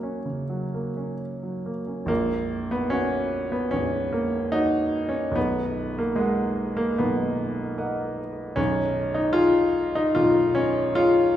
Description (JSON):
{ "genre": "classical, romantic character piece for solo piano", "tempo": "74 BPM", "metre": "4/4", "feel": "rubato", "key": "F# major", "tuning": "A4 = 439 Hz", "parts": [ { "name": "clear grand piano", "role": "solo", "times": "0.0-11.4 s", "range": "A#0 to F#5", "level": "-22 LUFS", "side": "equal", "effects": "none" } ], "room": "wet recital hall reverb, RT60 1.4 s", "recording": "heard from further back in the room", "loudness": "-22 LUFS", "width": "side -11 dB against mid", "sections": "0.0-2.1 A section; 2.1-11.4 B section", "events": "none", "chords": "0.0 F#; 2.1 F#/A#; 5.4 Bmaj7; 8.6 C#7/B", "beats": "0.30 1.22 | 2.10 2.92 3.73 4.54 | 5.36 6.18 6.99 7.79 | 8.58 9.37 10.18 10.99" }